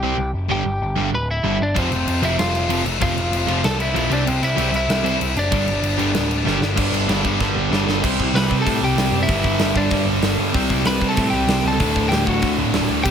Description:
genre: punk rock.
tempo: 191 BPM.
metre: 4/4.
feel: straight.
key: unclear.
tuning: A4 = 438 Hz.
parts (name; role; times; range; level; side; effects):
lightly driven lead guitar; melody; 0.0-13.1 s; C4 to B5; -24 LUFS; left 1 dB; ping-pong delay.
cranked stack guitar; riff; 0.0-13.1 s; D2 to C4; -24 LUFS; right 12 dB; overdrive.
sludgy distorted guitar; riff; 0.0-13.1 s; D2 to C4; -25 LUFS; left 10 dB; overdrive.
overdriven picked electric bass; bass; 0.0-13.1 s; D1 to C3; -24 LUFS; equal; none.
tight distorted guitar; riff; 1.7-13.1 s; D2 to C5; -25 LUFS; left 2 dB; distortion.
big rock drum kit; drums; 1.8-13.1 s; crash cymbal, hi-hat, kick drum, snare drum; -23 LUFS; equal; none.
room: light reverb.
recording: none.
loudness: -17 LUFS.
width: side -8 dB against mid.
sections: 0.0-6.8 A section; 6.8-8.0 B section; 8.0-13.1 C section.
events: half time 0.0-6.8; drum fill 6.5-6.8, 7.4-8.0.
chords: 0.0 C5; 0.5 G; 1.8 F; 4.1 C; 5.5 G; 6.8 G5; 8.0 C5; 9.3 G5; 10.5 C5; 11.8 D.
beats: 0.19 | 0.50 0.81 1.13 1.44 | 1.76 2.07 2.38 2.70 | 3.01 3.33 3.64 3.95 | 4.26 4.58 4.89 5.21 | 5.52 5.83 6.15 6.46 | 6.77 7.09 7.40 7.71 | 8.03 8.34 8.65 8.97 | 9.28 9.60 9.91 10.22 | 10.54 10.85 11.16 11.48 | 11.79 12.10 12.42 12.73 | 13.04.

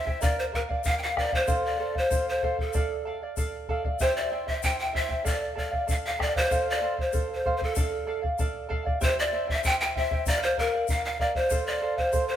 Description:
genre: andean folk, Andean ensemble.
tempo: 96 BPM.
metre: 2/4.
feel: straight.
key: unclear.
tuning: A4 = 440 Hz.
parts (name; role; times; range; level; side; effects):
breathy large pan pipes; melody; 0.0-12.4 s; A4 to G5; -27 LUFS; equal; none.
charango; accompaniment; 0.0-12.4 s; E4 to G5; -30 LUFS; right 1 dB; none.
bombo; percussion; 0.1-12.3 s; none; -30 LUFS; left 1 dB; none.
tube shaker; percussion; 0.2-12.3 s; none; -40 LUFS; left 4 dB; none.
room: moderate stone room reverb, RT60 1.2 s.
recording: band playing live in one room.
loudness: -24 LUFS.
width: side -10 dB against mid.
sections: 0.0-6.5 A section; 6.5-12.4 A section.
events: none.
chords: 0.2 Bb; 1.5 F; 2.7 Dm; 4.0 C; 5.3 Dm; 6.5 F; 7.8 Dm; 9.0 C; 10.3 Bb; 11.5 F.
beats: | 0.22 0.85 | 1.49 2.12 | 2.75 3.38 | 4.00 4.63 | 5.26 5.89 | 6.51 7.14 | 7.77 8.39 | 9.02 9.64 | 10.26 10.89 | 11.51 12.13.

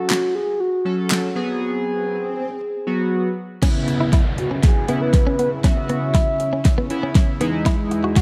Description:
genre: dance-pop.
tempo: 119 BPM.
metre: 4/4.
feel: straight.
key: C# minor.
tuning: A4 = 437 Hz.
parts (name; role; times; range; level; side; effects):
mellow horn-like synth lead; melody; 0.0-7.1 s; F#4 to E5; -26 LUFS; equal; chorus, digital delay.
chorused polysynth; accompaniment; 0.0-8.2 s; C#3 to A4; -26 LUFS; equal; sidechain pumping.
swell and downlifter; sound effects; 1.7-7.7 s; none; -35 LUFS; equal; none.
deep house drum kit; drums; 0.1-8.2 s; crash cymbal, handclaps, hi-hat, kick drum, snare drum; -19 LUFS; equal; none.
soft supersaw; sustained chords; 3.6-8.2 s; E2 to G#4; -30 LUFS; equal; sidechain pumping.
direct-recorded clean electric guitar; riff; 3.6-8.2 s; B3 to F#4; -29 LUFS; equal; analog chorus.
room: light reverb.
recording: dark, warm production.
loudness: -20 LUFS.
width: mono.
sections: 0.0-3.6 A section; 3.6-8.2 B section.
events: break 1.6-3.6; swell 1.7-3.6; build-up 3.6-8.2; drum fill 3.6-8.2.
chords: 0.0 F#m; 1.4 G#m7; 3.6 C#m7; 7.4 Emaj7.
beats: 0.10 0.60 1.10 | 1.61 2.11 2.62 3.12 | 3.63 4.13 4.63 5.14 | 5.64 6.15 6.65 7.16 | 7.66 8.16.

